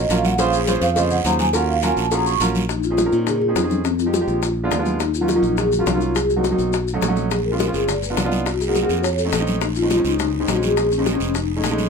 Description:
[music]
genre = Afro-Cuban jazz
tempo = 208 BPM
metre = 4/4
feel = straight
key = Bb minor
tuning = A4 = 436 Hz
[part]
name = vibraphone with soft mallets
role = melody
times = 0.0-11.8 s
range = C4 to Db6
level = -21 LUFS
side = left 2 dB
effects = none
[part]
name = warm grand piano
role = accompaniment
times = 0.0-11.9 s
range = Gb3 to D5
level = -24 LUFS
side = right 4 dB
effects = none
[part]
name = modern bright fingered electric bass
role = bass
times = 0.0-11.9 s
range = F1 to Bb2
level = -24 LUFS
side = equal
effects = none
[part]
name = congas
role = percussion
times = 0.1-11.9 s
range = none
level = -29 LUFS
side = left 1 dB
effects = none
[part]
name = cowbell and bongos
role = percussion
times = 0.1-11.9 s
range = none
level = -27 LUFS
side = left 6 dB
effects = none
[part]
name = guiro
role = percussion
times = 0.1-2.7, 7.3-11.9 s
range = none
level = -32 LUFS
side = right 7 dB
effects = none
[part]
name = maracas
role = percussion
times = 0.1-11.9 s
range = none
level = -32 LUFS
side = left 7 dB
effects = none
[sound]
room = moderate small room reverb, RT60 0.6 s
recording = minimal, uncompressed stereo recording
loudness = -17 LUFS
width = side -5 dB against mid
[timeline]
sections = 0.0-2.7 A section; 2.7-11.9 B section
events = vibraphone solo 0.0-2.7; grand piano fill 4.6-5.0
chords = 0.4 Bbm7; 1.5 Ebm9; 2.7 Bbm11; 3.8 Fm7; 4.4 Bb7b9; 5.0 Ebm9; 6.2 Cm7b5; 6.7 B9; 7.3 Bbm9; 7.9 G7b13; 8.5 Cm7b5; 9.0 F7b13; 9.6 Bbm11; 11.4 F7alt

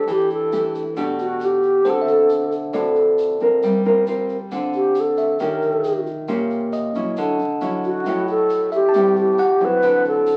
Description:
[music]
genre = bossa nova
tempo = 136 BPM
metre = 4/4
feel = straight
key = unclear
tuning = A4 = 439 Hz
[part]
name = mellow alto flute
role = melody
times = 0.0-10.4 s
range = F#4 to B4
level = -20 LUFS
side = equal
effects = none
[part]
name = nylon-string guitar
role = accompaniment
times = 0.0-10.4 s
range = A2 to Bb4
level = -23 LUFS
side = equal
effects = none
[part]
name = egg shaker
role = percussion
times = 0.1-10.4 s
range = none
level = -51 LUFS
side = equal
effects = none
[part]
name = bell-like tine electric piano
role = accompaniment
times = 1.9-10.0 s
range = C5 to A5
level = -30 LUFS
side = equal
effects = none
[sound]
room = moderate large studio reverb, RT60 0.8 s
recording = very old 78 rpm record, vinyl crackle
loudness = -19 LUFS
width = mono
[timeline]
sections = 0.0-10.4 A section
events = alto flute solo 0.0-10.4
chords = 0.1 Em7; 1.9 D7; 3.6 Gm11; 5.4 Eb9; 7.2 Dmaj9; 8.9 Am7; 9.8 D9

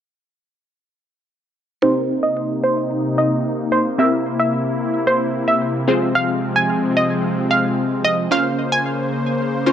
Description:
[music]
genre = pop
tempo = 111 BPM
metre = 4/4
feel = straight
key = unclear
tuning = A4 = 440 Hz
[part]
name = analog pluck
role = melody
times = 1.8-9.1 s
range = C5 to Ab5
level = -20 LUFS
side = right 2 dB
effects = chorus, low-pass filter, tape echo
[part]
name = wide unison pluck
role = accompaniment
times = 1.8-9.7 s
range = C4 to C5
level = -20 LUFS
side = equal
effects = phaser, low-pass filter
[part]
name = soft supersaw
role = sustained chords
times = 1.8-9.7 s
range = C3 to C5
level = -20 LUFS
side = left 1 dB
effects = low-pass filter
[sound]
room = moderate plate reverb, RT60 2.3 s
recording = dark, warm production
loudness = -16 LUFS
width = side -9 dB against mid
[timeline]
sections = 1.8-9.7 A section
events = filter sweep 1.8-9.7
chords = 1.8 Cm7; 4.0 C7; 5.9 Fm/C; 8.3 Bbmadd9

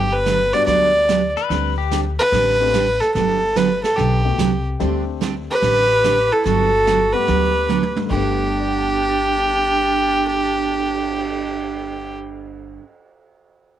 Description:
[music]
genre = country, western swing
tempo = 145 BPM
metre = 4/4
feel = swing 66% on 8ths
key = G major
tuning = A4 = 441 Hz
[part]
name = warm fiddle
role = melody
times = 0.0-12.2 s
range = G4 to D5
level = -18 LUFS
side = equal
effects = none
[part]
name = picked steel-string acoustic guitar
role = accompaniment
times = 0.0-12.8 s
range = G2 to G4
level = -24 LUFS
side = right 9 dB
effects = none
[part]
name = upright bass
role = bass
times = 0.0-12.8 s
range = G1 to D2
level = -25 LUFS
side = left 2 dB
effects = none
[part]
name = vintage brush drum kit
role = drums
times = 0.3-11.3 s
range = brushed snare drum, crash cymbal, cymbal swell, hi-hat, kick drum, snare drum, toms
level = -31 LUFS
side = right 6 dB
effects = none
[part]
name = dark upright piano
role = accompaniment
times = 0.5-13.2 s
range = G2 to A6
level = -28 LUFS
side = left 12 dB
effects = none
[part]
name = pedal steel guitar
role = second line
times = 1.4-2.0 s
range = G4 to B4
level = -24 LUFS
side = left 14 dB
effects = slapback echo
[part]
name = bright clarinet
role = second line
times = 5.5-12.2 s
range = D4 to G4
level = -27 LUFS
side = right 10 dB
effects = none
[sound]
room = light reverb, studio ambience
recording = 1960s-style stereo with parts hard left and right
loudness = -16 LUFS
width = side -11 dB against mid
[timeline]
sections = 0.0-4.8 A section; 4.8-8.1 B section; 8.1-11.4 C section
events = drum fill 7.7-8.1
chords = 0.0 Gmaj7; 1.5 D7sus4; 3.1 Gmaj9; 4.8 D7sus4; 6.5 Gmaj9

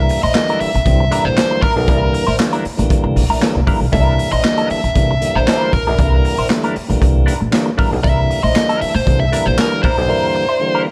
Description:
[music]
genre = funk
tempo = 117 BPM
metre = 4/4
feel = straight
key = C mixolydian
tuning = A4 = 440 Hz
[part]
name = nasal lead guitar with a parked wah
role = melody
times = 0.0-10.8 s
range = Bb4 to E5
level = -21 LUFS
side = equal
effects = overdrive
[part]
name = tonewheel organ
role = stabs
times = 0.0-10.9 s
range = D3 to C4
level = -24 LUFS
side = equal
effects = overdrive, tape echo
[part]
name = upright bass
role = bass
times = 0.0-10.1 s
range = Bb1 to C2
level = -20 LUFS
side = equal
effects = none
[part]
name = clean electric guitar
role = accompaniment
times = 0.1-10.9 s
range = D4 to C5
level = -25 LUFS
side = equal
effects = wah, spring reverb
[part]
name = raw garage drum kit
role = drums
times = 0.1-10.0 s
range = handclaps, hi-hat, kick drum, snare drum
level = -21 LUFS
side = equal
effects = none
[sound]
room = light reverb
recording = dark, warm production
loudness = -15 LUFS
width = mono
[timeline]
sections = 0.0-10.9 A section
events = none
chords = 0.0 C9

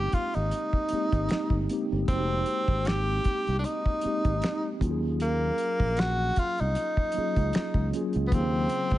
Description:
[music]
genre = R&B, neo-soul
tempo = 77 BPM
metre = 4/4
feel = swing 55% on 16ths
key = unclear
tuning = A4 = 441 Hz
[part]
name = breathy tenor saxophone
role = melody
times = 0.0-9.0 s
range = Bb3 to G4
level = -29 LUFS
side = equal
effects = none
[part]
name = mellow tine electric piano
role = accompaniment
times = 0.0-9.0 s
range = Db3 to F5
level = -32 LUFS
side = equal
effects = medium stereo tremolo
[part]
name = fretless electric bass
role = bass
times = 0.0-9.0 s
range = F1 to Eb2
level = -29 LUFS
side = equal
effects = none
[part]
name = cloth-damped thuddy drum kit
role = drums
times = 0.1-9.0 s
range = finger snaps, hi-hat, kick drum, snare drum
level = -28 LUFS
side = equal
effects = none
[sound]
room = small room ambience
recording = nothing above 10.7 kHz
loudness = -25 LUFS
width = side -15 dB against mid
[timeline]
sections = 0.0-9.0 A section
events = none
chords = 0.0 Fm11 (rootless); 4.8 Ebm11

